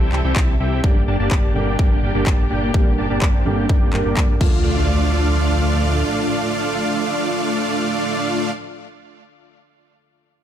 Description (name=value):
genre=EDM, festival progressive house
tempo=126 BPM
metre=4/4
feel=straight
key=D minor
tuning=A4 = 440 Hz
part: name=dark baby grand piano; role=accompaniment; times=0.0-10.4 s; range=D3 to Bb4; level=-27 LUFS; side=right 1 dB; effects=sidechain pumping, ping-pong delay
part: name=muted studio string section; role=sustained chords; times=0.0-8.5 s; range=A2 to A4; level=-29 LUFS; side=left 1 dB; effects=sidechain pumping
part: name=dense compressed supersaw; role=riff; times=0.0-8.5 s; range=A3 to A5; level=-21 LUFS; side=right 1 dB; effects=sidechain pumping, low-pass filter, ping-pong delay
part: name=fat analog bass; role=bass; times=0.0-6.0 s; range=G1 to G2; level=-21 LUFS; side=equal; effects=tube saturation, sidechain pumping
part: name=big-room dance drum kit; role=drums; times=0.1-4.5 s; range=crash cymbal, handclaps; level=-27 LUFS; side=left 1 dB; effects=none
part: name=electronic kick drum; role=drums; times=0.4-4.5 s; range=none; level=-17 LUFS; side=equal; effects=none
part: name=impact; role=sound effects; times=4.4-8.5 s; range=none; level=-27 LUFS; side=equal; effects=none
room=light reverb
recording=none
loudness=-16 LUFS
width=side -10 dB against mid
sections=0.0-4.6 A section; 4.6-8.5 B section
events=filter sweep on supersaw synth 0.0-4.6; filter sweep on analog synth bass 0.0-4.6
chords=0.0 C; 0.8 Gm; 4.4 Dm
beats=0.36 | 0.84 1.31 1.79 2.27 | 2.74 3.22 3.69 4.17 | 4.65 5.12 5.60 6.08 | 6.55 7.03 7.50 7.98